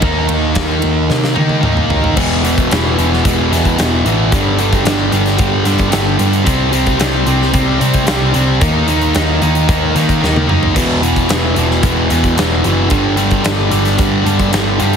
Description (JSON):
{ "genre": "quiet-loud alternative rock", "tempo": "112 BPM", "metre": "4/4", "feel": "straight", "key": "E harmonic minor", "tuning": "A4 = 439 Hz", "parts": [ { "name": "sludgy distorted guitar", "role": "riff", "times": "0.0-15.0 s", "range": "E2 to D#4", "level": "-14 LUFS", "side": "equal", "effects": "overdrive" }, { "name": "hollow-body short-scale picked electric bass", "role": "bass", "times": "0.0-15.0 s", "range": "E1 to D#3", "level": "-17 LUFS", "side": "equal", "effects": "none" }, { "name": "huge arena drum kit", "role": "drums", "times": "0.0-15.0 s", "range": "crash cymbal, hi-hat, kick drum, ride cymbal, snare drum, toms", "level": "-18 LUFS", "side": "equal", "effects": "none" } ], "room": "light reverb", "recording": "heavily compressed radio sound, multiband compression", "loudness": "-11 LUFS", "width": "side -7 dB against mid", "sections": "0.0-2.2 A section; 2.2-15.0 B section", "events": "drum fill 1.1-2.2, 10.2-10.8", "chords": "0.0 D#5; 2.2 E5; 4.3 G5; 6.5 C5; 8.6 D#5; 10.8 E5; 12.9 G5" }